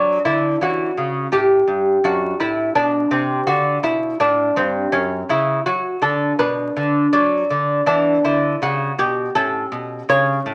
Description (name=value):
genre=classical, baroque-style dance for lute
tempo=82 BPM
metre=4/4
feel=rubato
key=unclear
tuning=A4 = 438 Hz
part: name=lute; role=solo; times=0.0-10.5 s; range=F#2 to D5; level=-19 LUFS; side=equal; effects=none
room=wet studio reverb, RT60 0.7 s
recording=vinyl crackle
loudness=-19 LUFS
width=mono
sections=0.0-10.5 A section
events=none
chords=0.0 D; 0.6 C#dim; 2.0 D/F#; 4.9 F#5; 6.4 Bm; 7.9 E5; 9.4 Aadd9